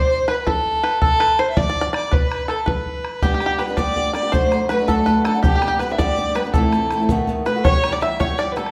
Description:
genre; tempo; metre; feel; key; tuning
celtic folk, Celtic jig; 109 BPM (dotted quarters); 6/8; straight; unclear; A4 = 439 Hz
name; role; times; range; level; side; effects
dark fiddle; melody; 0.0-8.7 s; G4 to E5; -23 LUFS; equal; none
bluegrass banjo; second line; 0.0-8.7 s; G4 to E5; -28 LUFS; equal; none
bodhran; percussion; 0.3-8.7 s; none; -24 LUFS; equal; none
picked old ladder-braced acoustic guitar; accompaniment; 3.2-8.7 s; A2 to G4; -24 LUFS; equal; none
room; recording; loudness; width
moderate recital hall reverb, RT60 1.4 s; none; -19 LUFS; mono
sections
0.0-7.6 A section; 7.6-8.7 B section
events
none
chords
0.0 N.C.; 2.1 G; 4.3 D/F#; 5.4 G; 6.5 Am; 7.1 B7; 7.6 Em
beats
0.47 | 1.02 1.57 | 2.12 2.67 | 3.23 3.78 | 4.33 4.88 | 5.43 5.99 | 6.54 7.09 | 7.65 8.20

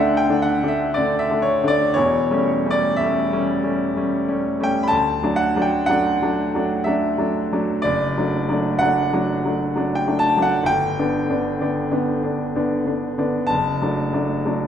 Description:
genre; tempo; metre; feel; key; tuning
classical, romantic nocturne for solo piano; 62 BPM; 3/4; uneven beats, rubato; D major; A4 = 440 Hz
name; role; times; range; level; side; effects
clear baby grand piano; solo; 0.0-14.7 s; E1 to B5; -18 LUFS; equal; none
room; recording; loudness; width
wet recital hall reverb, RT60 1.6 s; heard from further back in the room; -18 LUFS; side -9 dB against mid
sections
0.0-14.7 A section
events
none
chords
0.0 D5; 2.0 A7/E; 4.9 D; 7.8 D/F#; 10.7 G; 13.5 D/F#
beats
0.96 | 1.97 2.99 3.97 | 4.92 5.90 6.86 | 7.84 8.80 9.75 | 10.66 11.60 12.54 | 13.51 14.46

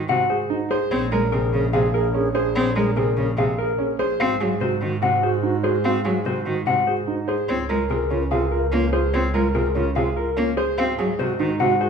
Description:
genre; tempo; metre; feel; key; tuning
classical, minimalist pattern music; 146 BPM; 4/4; straight; Db major; A4 = 437 Hz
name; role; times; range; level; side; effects
wooden-headed alto flute; second line; 0.0-11.9 s; F4 to Ab4; -28 LUFS; right 4 dB; none
clear cello; accompaniment; 0.0-11.8 s; C3 to C4; -25 LUFS; left 2 dB; none
clear chamber double bass section; bass; 0.0-11.9 s; Bb1 to Ab2; -26 LUFS; right 1 dB; none
mellow electric guitar; melody; 0.1-11.9 s; Ab4 to Gb5; -24 LUFS; left 5 dB; none
warm grand piano; arpeggios; 0.1-11.9 s; Db4 to C5; -26 LUFS; right 5 dB; none
room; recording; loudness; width
moderate recital hall reverb, RT60 1.4 s; minimal, uncompressed stereo recording; -19 LUFS; side -6 dB against mid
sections
0.0-11.9 A section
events
none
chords
0.0 Ab7; 0.9 Bbm7; 4.2 Ab7; 7.5 Db6; 10.8 Ab7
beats
0.09 0.50 | 0.92 1.33 1.74 2.15 | 2.56 2.97 3.38 3.79 | 4.20 4.61 5.02 5.43 | 5.85 6.26 6.67 7.08 | 7.49 7.90 8.31 8.72 | 9.13 9.54 9.96 10.37 | 10.78 11.19 11.60

